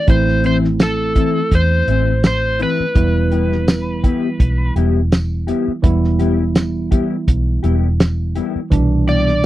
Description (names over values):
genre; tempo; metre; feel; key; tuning
straight-eighth soul blues; 83 BPM; 4/4; swing 56% on 16ths; E minor; A4 = 439 Hz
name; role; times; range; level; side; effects
overdriven slide guitar; melody; 0.0-4.7, 9.1-9.5 s; A4 to D5; -20 LUFS; left 1 dB; slapback echo
tine electric piano; accompaniment; 0.0-9.5 s; B2 to E4; -21 LUFS; right 3 dB; none
vintage muted fingered electric bass; bass; 0.1-9.5 s; E1 to E2; -18 LUFS; equal; none
cloth-damped thuddy drum kit; drums; 0.1-9.5 s; hi-hat, kick drum, snare drum, tambourine; -14 LUFS; equal; none
mellow electric guitar; stabs; 0.4-9.3 s; E3 to G4; -20 LUFS; left 6 dB; ensemble chorus
room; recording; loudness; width
little or no reverb; dry, close 1970s-style studio recording; -14 LUFS; side -15 dB against mid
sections
0.0-9.5 A section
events
none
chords
0.0 Am; 3.0 Em; 8.7 Cmaj7